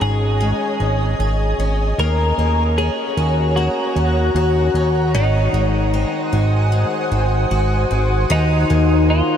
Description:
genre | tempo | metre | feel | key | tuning
dream pop | 76 BPM | 4/4 | straight | Eb dorian | A4 = 441 Hz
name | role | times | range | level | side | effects
twelve-string electric guitar | melody | 0.0-9.4 s | Eb4 to Bb4 | -22 LUFS | left 2 dB | wide subtle chorus, analog delay
shimmering ambient pad | sustained chords | 0.0-9.4 s | C5 to Eb6 | -24 LUFS | right 2 dB | chorus, built-in reverb
picked twelve-string acoustic guitar | arpeggios | 0.0-9.4 s | Eb3 to Ab4 | -24 LUFS | left 3 dB | wide subtle chorus, analog delay
fat analog bass | bass | 0.0-9.2 s | Ab1 to Eb2 | -17 LUFS | equal | none
room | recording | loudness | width
moderate huge ambient reverb, RT60 7.1 s | dreamy mix soaked in reverb | -15 LUFS | side -9 dB against mid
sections
0.0-8.3 A section; 8.3-9.4 B section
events
none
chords
0.0 Absus4; 2.0 Ebm7; 5.1 Ab7; 8.3 Ebm7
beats
0.41 1.20 | 1.99 2.77 3.56 4.35 | 5.14 5.93 6.72 7.51 | 8.30 9.09

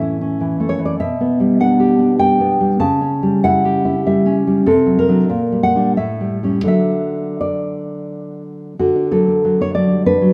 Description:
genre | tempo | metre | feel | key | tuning
romantic piece for solo classical guitar | 79-105 BPM | 3/4 | rubato | D major | A4 = 441 Hz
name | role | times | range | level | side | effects
nylon-string guitar | solo | 0.0-10.3 s | A2 to A5 | -16 LUFS | equal | none
room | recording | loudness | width
moderate recital hall reverb, RT60 1.7 s | none | -16 LUFS | mono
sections
0.0-8.8 A section; 8.8-10.3 A section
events
none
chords
0.0 A; 1.0 G/B; 2.8 A7/C#; 4.7 D7/C; 5.3 Gm/Bb; 6.0 A7; 6.7 D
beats
0.41 | 1.01 1.60 2.19 | 2.80 3.43 4.04 | 4.66 5.31 5.97 | 6.69 7.41 8.12 | 8.80 9.45 10.07

